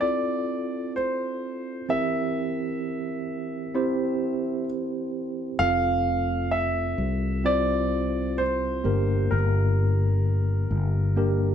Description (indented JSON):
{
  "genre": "pop",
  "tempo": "64 BPM",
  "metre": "4/4",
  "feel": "straight",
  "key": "F major",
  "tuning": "A4 = 439 Hz",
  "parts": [
    { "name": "clear concert grand piano", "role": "melody", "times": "0.0-11.5 s", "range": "Bb4 to F5", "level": "-28 LUFS", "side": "right 1 dB", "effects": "none" },
    { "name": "tine electric piano", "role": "accompaniment", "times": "0.0-11.5 s", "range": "G2 to C5", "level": "-27 LUFS", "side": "right 1 dB", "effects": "fast stereo tremolo" },
    { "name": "fretless electric bass", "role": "bass", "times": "5.6-11.5 s", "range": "F1 to C2", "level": "-25 LUFS", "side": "left 1 dB", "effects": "none" }
  ],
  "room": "moderate studio reverb, RT60 0.9 s",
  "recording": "band playing live in one room",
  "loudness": "-23 LUFS",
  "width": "side -9 dB against mid",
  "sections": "0.0-11.5 A section",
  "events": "tine electric piano fill 11.2-11.5",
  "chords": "0.0 Fmaj7; 1.9 C7/E; 5.6 Fmaj7; 8.8 Gm"
}